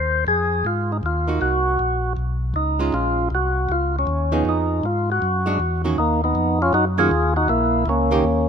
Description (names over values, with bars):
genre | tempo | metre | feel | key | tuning
soul jazz organ trio | 158 BPM | 4/4 | swing 66% on 8ths | Bb minor | A4 = 440 Hz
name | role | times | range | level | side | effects
percussive tonewheel organ | melody | 0.0-8.5 s | Bb3 to C5 | -20 LUFS | equal | slow rotary speaker
mellow tonewheel organ | bass | 0.0-8.5 s | Bb1 to Ab2 | -23 LUFS | left 1 dB | slow rotary speaker
archtop guitar, miked and amplified | accompaniment | 1.3-8.2 s | Eb3 to Ab4 | -26 LUFS | right 5 dB | none
room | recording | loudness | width
light reverb | minimal, uncompressed stereo recording | -18 LUFS | side -7 dB against mid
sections
0.0-6.0 A section; 6.0-8.5 B section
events
none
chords
0.0 Ebsus2; 1.4 Cm7b5; 2.2 B69; 2.9 Bbm7; 4.4 Fm7b5; 5.2 Bb7alt; 6.0 Ebm; 7.5 Eb7(no3)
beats
0.27 0.65 1.03 | 1.41 1.79 2.17 2.55 | 2.93 3.31 3.69 4.07 | 4.45 4.83 5.21 5.59 | 5.97 6.35 6.73 7.11 | 7.49 7.87 8.25